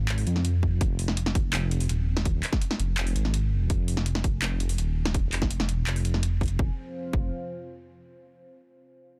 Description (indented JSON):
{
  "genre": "half-time drum and bass",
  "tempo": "166 BPM",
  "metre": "4/4",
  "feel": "half-time",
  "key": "F minor",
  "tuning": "A4 = 440 Hz",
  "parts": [
    { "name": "dark analog pad", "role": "sustained chords", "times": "0.0-8.0 s", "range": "F3 to Ab5", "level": "-45 LUFS", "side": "equal", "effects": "none" },
    { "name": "dark detuned saw bass", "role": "bass", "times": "0.0-7.3 s", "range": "Eb1 to F2", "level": "-28 LUFS", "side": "equal", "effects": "none" },
    { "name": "drum and bass drum kit", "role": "drums", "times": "0.1-6.5 s", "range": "handclaps, hi-hat, snare drum", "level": "-33 LUFS", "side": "equal", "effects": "none" },
    { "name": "electronic kick drum", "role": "drums", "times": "0.6-7.2 s", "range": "none", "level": "-29 LUFS", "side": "equal", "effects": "none" }
  ],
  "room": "digital ambience",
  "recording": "dense, heavily limited modern master",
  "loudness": "-27 LUFS",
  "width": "mono",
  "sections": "0.0-6.6 A section; 6.6-8.0 B section",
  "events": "none",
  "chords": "0.0 F5"
}